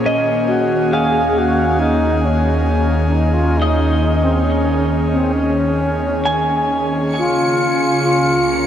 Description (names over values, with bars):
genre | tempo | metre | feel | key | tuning
ambient | 68 BPM | 4/4 | straight | unclear | A4 = 442 Hz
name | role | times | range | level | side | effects
airy breathy pad | sustained chords | 0.0-8.7 s | Db3 to Bb4 | -18 LUFS | equal | chorus, shimmer reverb
clean electric guitar | arpeggios | 0.1-8.7 s | Eb5 to Bb5 | -23 LUFS | equal | lush chorus, shimmer reverb, tape echo
deep rumbling drone | bass | 1.1-8.7 s | Db2 to Eb2 | -21 LUFS | equal | built-in reverb
mellow reedy alto flute | melody | 0.5-8.6 s | C4 to Ab4 | -19 LUFS | equal | shimmer reverb, tape echo
clear symphonic violin section | texture | 7.1-8.7 s | Db7 | -23 LUFS | equal | shimmer reverb
room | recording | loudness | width
wet cathedral reverb, RT60 6.1 s | dark, warm production | -14 LUFS | side -9 dB against mid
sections
0.0-7.1 A section; 7.1-8.7 B section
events
none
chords
0.1 Eb7sus4; 7.1 Db6